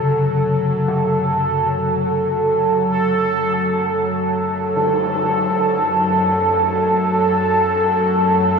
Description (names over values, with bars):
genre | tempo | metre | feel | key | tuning
dark ambient drone | free time | none | none | unclear | A4 = 441 Hz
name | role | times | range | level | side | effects
deep dark ambient pad | sustained chords | 0.2-8.6 s | A4 to A5 | -27 LUFS | right 2 dB | none
gamelan-type bronze metallophone | arpeggios | 0.0-6.4 s | C#3 | -24 LUFS | left 1 dB | analog delay
bowed-like drone | drone | 0.0-8.6 s | F#2 to F#3 | -22 LUFS | left 2 dB | built-in reverb
bubbling stepped-filter texture | texture | 0.0-8.6 s | A4 | -17 LUFS | right 1 dB | chorus, built-in reverb
tam-tam | percussion | 4.8-5.0 s | none | -30 LUFS | left 4 dB | low-pass filter on cymbals
room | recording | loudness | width
wet lush hall reverb, RT60 2.6 s | dreamy mix soaked in reverb | -16 LUFS | side -5 dB against mid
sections
0.0-8.6 A section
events
fade-in on drum 0.0-8.6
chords
0.0 F#m